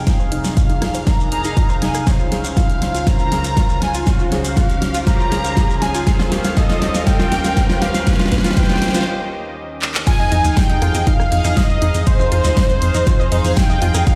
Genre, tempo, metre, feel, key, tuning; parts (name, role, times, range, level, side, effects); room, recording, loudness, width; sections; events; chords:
progressive house; 120 BPM; 4/4; straight; F minor; A4 = 440 Hz
unison lead; melody; 0.0-14.2 s; C5 to Bb5; -26 LUFS; equal; tape echo
clear studio violin section; second line; 0.0-14.2 s; C5 to Bb5; -34 LUFS; equal; sidechain pumping, low-pass filter, tape echo
warm analog pad; sustained chords; 0.0-14.2 s; Db2 to Ab5; -28 LUFS; equal; chorus, sidechain pumping
chorused polysynth; stabs; 0.0-14.2 s; Db4 to F5; -29 LUFS; equal; sidechain pumping
riser; sound effects; 0.1-9.1 s; -33 LUFS; equal
unison pluck; arpeggios; 0.1-14.1 s; Eb4 to Eb6; -30 LUFS; equal; sidechain pumping, tape echo
electronic kick drum; drums; 0.1-14.2 s; -19 LUFS; equal
pop drum kit; drums; 0.1-14.2 s; crash cymbal, handclaps, hi-hat, rim click, snare drum; -24 LUFS; equal
shekere; percussion; 0.1-14.2 s; -34 LUFS; equal
tight sequencer bass; bass; 10.2-14.0 s; Eb2 to F2; -20 LUFS; equal; sidechain pumping
light reverb, digital ambience; played on a big sound system in a bare room, large studio reverb; -17 LUFS; mono
0.0-10.1 A section; 10.1-14.2 B section
build-up 0.0-10.1; drum fill 0.0-9.1, 9.8; filter sweep on synth pluck 0.0-10.1; filter sweep on analog synth lead 0.0-10.1; riser 0.1-9.1; break 9.1-10.1; drop 10.1-14.2
0.0 Fm7; 2.1 Dbmaj7; 6.1 Eb7; 10.1 Fm7